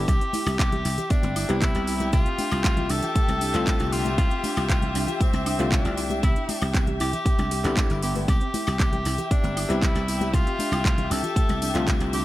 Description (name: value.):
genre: nu-disco, nu disco.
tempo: 117 BPM.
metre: 4/4.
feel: straight.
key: unclear.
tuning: A4 = 439 Hz.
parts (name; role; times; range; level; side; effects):
clear tenor saxophone; melody; 0.0-12.2 s; C4 to A4; -30 LUFS; equal; tape echo.
warm electric grand piano; accompaniment; 0.0-12.2 s; C3 to F4; -30 LUFS; left 2 dB; sidechain pumping.
warm chamber string section; sustained chords; 0.0-12.2 s; G4 to E5; -32 LUFS; left 3 dB; sidechain pumping.
soft round pluck; arpeggios; 0.0-12.2 s; A3 to B4; -33 LUFS; right 2 dB; chorus, sidechain pumping, tape echo.
dry thumbed slap bass; bass; 0.0-12.2 s; G1 to C2; -27 LUFS; equal; tube saturation, sidechain pumping.
electronic kick drum; drums; 0.1-12.0 s; none; -22 LUFS; equal; none.
house drum kit; drums; 0.1-12.2 s; handclaps, hi-hat, tambourine, woodblock; -32 LUFS; right 1 dB; none.
cabasa and congas; percussion; 0.1-12.1 s; none; -35 LUFS; left 3 dB; none.
room: little or no reverb.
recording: none.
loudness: -21 LUFS.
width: side -16 dB against mid.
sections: 0.0-12.2 A section.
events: none.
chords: 0.1 Cmaj7; 2.1 F6/C; 6.0 Em7/C; 8.3 Cmaj7; 10.3 F6/C.